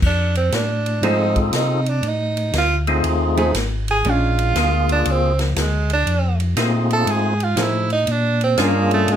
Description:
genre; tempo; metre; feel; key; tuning
soul jazz organ trio; 119 BPM; 4/4; swing 66% on 8ths; unclear; A4 = 441 Hz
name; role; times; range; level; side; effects
mellow tonewheel organ; bass; 0.0-9.2 s; G#1 to C3; -20 LUFS; equal; chorus vibrato, slow rotary speaker
swinging big-band drum kit; drums; 0.0-9.2 s; crash cymbal, hi-hat, kick drum, ride cymbal, snare drum; -26 LUFS; equal; none
edgy tenor saxophone; melody; 0.1-9.2 s; F3 to A4; -21 LUFS; right 4 dB; none
percussive tonewheel organ; melody; 1.0-9.2 s; A3 to A4; -21 LUFS; left 2 dB; slow rotary speaker, overdrive
archtop guitar, miked and amplified; accompaniment; 1.0-8.9 s; F3 to G#4; -23 LUFS; right 2 dB; none
room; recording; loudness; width
moderate studio reverb, RT60 0.6 s; none; -16 LUFS; side -9 dB against mid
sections
0.0-9.2 A section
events
tenor saxophone solo 0.0-9.2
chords
0.0 F7#9; 4.0 Bb7#9; 6.1 F7#9; 8.1 Bb7#9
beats
| 0.02 0.53 1.03 1.53 | 2.04 2.54 3.04 3.54 | 4.05 4.55 5.05 5.56 | 6.06 6.56 7.07 7.57 | 8.07 8.58 9.08

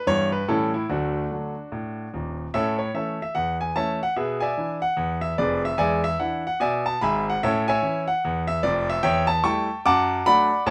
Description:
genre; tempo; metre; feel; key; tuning
jazz, stride piano; 147 BPM; 4/4; swing 62% on 8ths; A major; A4 = 440 Hz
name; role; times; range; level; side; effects
clear concert grand piano; solo; 0.0-10.7 s; Eb1 to D6; -24 LUFS; equal; none
room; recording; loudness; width
moderate studio ambience, RT60 0.5 s; none; -24 LUFS; mono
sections
0.0-2.5 A section; 2.5-10.7 B section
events
none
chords
0.1 Em/G; 0.5 A7; 0.9 D; 2.5 A; 4.2 E7/B; 5.8 E7; 7.4 A; 9.0 A7/E; 9.9 D/F#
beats
0.07 0.48 | 0.88 1.29 1.70 2.11 | 2.52 2.93 3.34 3.75 | 4.15 4.56 4.97 5.38 | 5.79 6.19 6.60 7.01 | 7.42 7.82 8.23 8.64 | 9.05 9.45 9.86 10.27 | 10.68

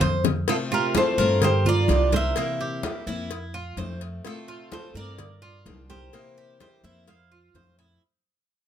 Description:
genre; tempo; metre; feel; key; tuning
latin, Cuban son and guajira; 127 BPM; 4/4; straight; F major; A4 = 441 Hz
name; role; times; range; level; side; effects
Cuban tres; arpeggios; 0.0-8.0 s; Bb3 to C5; -30 LUFS; right 3 dB; none
upright bass; bass; 0.0-8.0 s; C2 to G2; -26 LUFS; equal; none
congas; percussion; 0.0-7.8 s; none; -29 LUFS; left 2 dB; none
cowbell and bongos; percussion; 0.0-8.0 s; none; -29 LUFS; left 7 dB; none
Cuban tres; melody; 0.5-7.7 s; A4 to F5; -26 LUFS; equal; plate reverb
flamenco guitar; second line; 0.5-7.7 s; F4 to C5; -30 LUFS; right 7 dB; none
picked steel-string acoustic guitar; accompaniment; 0.5-8.0 s; C3 to G4; -32 LUFS; left 4 dB; none
room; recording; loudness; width
moderate studio reverb, RT60 0.5 s; none; -21 LUFS; side -9 dB against mid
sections
0.0-8.0 A section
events
fade-out 0.0-8.0; drum fill 0.0-0.5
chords
0.0 Fmaj7; 1.4 Gm7; 2.4 C7; 3.3 Fmaj7; 5.2 Gm7; 6.1 C7; 7.1 Fmaj7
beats
0.01 | 0.48 0.95 1.42 1.89 | 2.36 2.83 3.31 3.78 | 4.25 4.72 5.19 5.66 | 6.13 6.60 7.08 7.55

